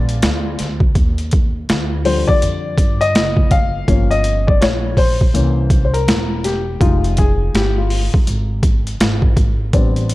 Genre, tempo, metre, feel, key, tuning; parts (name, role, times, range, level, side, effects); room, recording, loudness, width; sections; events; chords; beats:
hip hop, jazz-hop; 82 BPM; 4/4; swing 61% on 16ths; Eb major; A4 = 440 Hz
warm grand piano; accompaniment; 0.0-10.1 s; D3 to F5; -19 LUFS; left 4 dB
upright bass; bass; 0.0-10.1 s; E1 to G2; -19 LUFS; equal
boom bap sampler-style drum kit; drums; 0.1-10.1 s; hi-hat, kick drum, snare drum; -15 LUFS; equal; overdrive
light reverb, small room ambience; dark, warm production; -13 LUFS; side -18 dB against mid
1.0-10.1 A section
grand piano solo 1.0-10.1
0.0 Bb7b9; 1.0 Ebmaj9; 3.9 Gm7b5; 5.3 C7b9; 6.8 Fm9
0.23 | 0.96 1.69 2.42 3.15 | 3.88 4.62 5.35 6.08 | 6.81 7.54 8.27 9.01 | 9.74